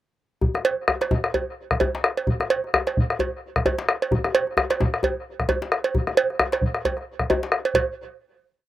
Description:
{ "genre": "west african traditional, West African drum ensemble", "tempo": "131 BPM", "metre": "4/4", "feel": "swing 57% on 16ths", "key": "none", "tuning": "none", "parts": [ { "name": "bombo", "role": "percussion", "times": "0.4-7.9 s", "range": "none", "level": "-22 LUFS", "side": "left 2 dB", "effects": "none" }, { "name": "djembe", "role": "percussion", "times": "0.4-8.0 s", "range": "none", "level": "-27 LUFS", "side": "left 3 dB", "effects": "none" }, { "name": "cowbell", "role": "percussion", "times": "0.6-8.0 s", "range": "none", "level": "-22 LUFS", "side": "right 4 dB", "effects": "none" } ], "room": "little or no reverb", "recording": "recorded outdoors, with no room sound", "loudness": "-21 LUFS", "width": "side -14 dB against mid", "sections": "0.4-7.7 A section; 7.7-8.7 final hit", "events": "none", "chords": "none" }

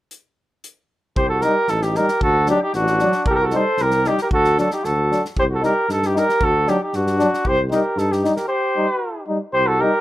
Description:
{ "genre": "balkan folk, Balkan brass band", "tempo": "115 BPM", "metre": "2/4", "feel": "straight", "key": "C dorian sharp4", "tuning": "A4 = 440 Hz", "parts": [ { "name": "natural country drum kit", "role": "percussion", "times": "0.1-8.4 s", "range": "hi-hat, kick drum, snare drum", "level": "-27 LUFS", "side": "equal", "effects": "none" }, { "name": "clear flugelhorn", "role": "melody", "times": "1.2-10.0 s", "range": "F#4 to C5", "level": "-19 LUFS", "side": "right 1 dB", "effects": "none" }, { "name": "warm flugelhorn", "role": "second line", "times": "1.2-10.0 s", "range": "D4 to A4", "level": "-26 LUFS", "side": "right 1 dB", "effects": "none" }, { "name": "mellow tuba", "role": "bass", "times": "1.2-9.8 s", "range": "A1 to G2", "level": "-23 LUFS", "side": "equal", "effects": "none" }, { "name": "bright trombone", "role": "accompaniment", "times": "1.4-9.9 s", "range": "D4 to Eb4", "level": "-22 LUFS", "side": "left 3 dB", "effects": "none" }, { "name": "mellow euphonium", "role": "accompaniment", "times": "1.5-9.9 s", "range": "F#3 to G3", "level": "-26 LUFS", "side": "right 3 dB", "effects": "none" } ], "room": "small room ambience", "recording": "rough home demo mix", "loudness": "-16 LUFS", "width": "side -15 dB against mid", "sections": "0.1-1.2 A section; 1.2-9.5 B section", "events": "break 8.5-9.5", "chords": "0.1 N.C.; 1.2 Cm; 2.2 D; 3.3 Cm; 4.3 D; 5.4 Cm; 6.4 D; 7.5 Cm" }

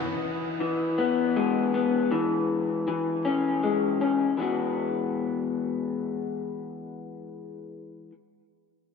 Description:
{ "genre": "rock", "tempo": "53 BPM (dotted quarters)", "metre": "6/8", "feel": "straight", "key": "E major", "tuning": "A4 = 440 Hz", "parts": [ { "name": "electric guitar through a small old amp", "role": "arpeggios", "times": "0.0-8.1 s", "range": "E3 to F#4", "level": "-25 LUFS", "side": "left 4 dB", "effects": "wide subtle chorus, analog delay" } ], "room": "moderate scoring stage reverb, RT60 2.1 s", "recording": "none", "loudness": "-24 LUFS", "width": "side -5 dB against mid", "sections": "0.0-4.4 A section; 4.4-6.7 B section", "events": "none", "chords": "0.0 E; 2.1 C#m/E; 4.4 Eadd9" }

